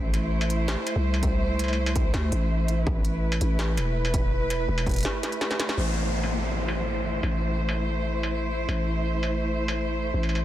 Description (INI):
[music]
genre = half-time drum and bass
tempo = 165 BPM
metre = 4/4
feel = half-time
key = A minor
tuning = A4 = 441 Hz
[part]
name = rich studio cello section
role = sustained chords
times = 0.0-10.4 s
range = A3 to C5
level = -29 LUFS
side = right 1 dB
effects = sidechain pumping
[part]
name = growling 808-style bass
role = bass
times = 0.0-10.4 s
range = E1 to D2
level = -26 LUFS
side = equal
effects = none
[part]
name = industrial drum kit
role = drums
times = 0.1-10.4 s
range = crash cymbal, hi-hat, snare drum, struck metal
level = -31 LUFS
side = equal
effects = low-pass filter on hats, small room reverb, low-pass filter on perc, low-pass filter on snare, low-pass filter on cymbals
[part]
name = electronic kick drum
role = drums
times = 1.2-4.9 s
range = none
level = -27 LUFS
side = equal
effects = distortion, small room reverb
[part]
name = downlifter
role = sound effects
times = 5.8-8.7 s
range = none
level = -33 LUFS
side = left 1 dB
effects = none
[sound]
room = light reverb, digital ambience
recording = dense, heavily limited modern master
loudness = -24 LUFS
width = side -13 dB against mid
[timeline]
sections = 0.0-5.8 A section; 5.8-10.4 B section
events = drum fill 5.2-5.8; band accent 5.7; filter sweep on drum 5.8-10.4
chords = 0.0 Am